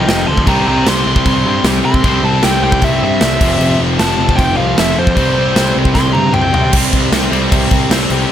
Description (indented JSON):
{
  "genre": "punk rock",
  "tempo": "153 BPM",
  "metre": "4/4",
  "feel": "straight",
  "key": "unclear",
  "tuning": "A4 = 439 Hz",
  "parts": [
    { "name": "bluesy overdriven lead guitar", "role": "melody", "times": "0.0-6.7 s", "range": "C5 to C6", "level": "-17 LUFS", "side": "equal", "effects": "distortion" },
    { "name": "distorted electric guitar", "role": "riff", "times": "0.0-8.3 s", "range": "F2 to C4", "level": "-18 LUFS", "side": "right 1 dB", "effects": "overdrive" },
    { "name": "distorted electric guitar", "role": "riff", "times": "0.0-8.3 s", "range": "F2 to C4", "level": "-18 LUFS", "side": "equal", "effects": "overdrive" },
    { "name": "fuzz picked electric bass", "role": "bass", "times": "0.0-8.2 s", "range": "F1 to C3", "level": "-17 LUFS", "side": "equal", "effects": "overdrive" },
    { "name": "big rock drum kit", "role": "drums", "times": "0.1-8.2 s", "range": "crash cymbal, kick drum, snare drum, toms", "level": "-15 LUFS", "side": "equal", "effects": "none" }
  ],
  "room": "light reverb",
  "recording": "none",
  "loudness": "-10 LUFS",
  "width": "side -10 dB against mid",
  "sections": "0.0-6.7 A section; 6.7-8.3 B section",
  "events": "lead electric guitar solo 0.0-6.7; drum fill 6.0-6.7",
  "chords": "0.5 C5; 3.4 F; 5.2 C5",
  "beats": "0.09 | 0.47 0.86 1.26 1.65 | 2.04 2.43 2.82 3.21 | 3.60 4.00 4.39 4.78 | 5.17 5.56 5.96 6.35 | 6.74 7.13 7.52 7.91"
}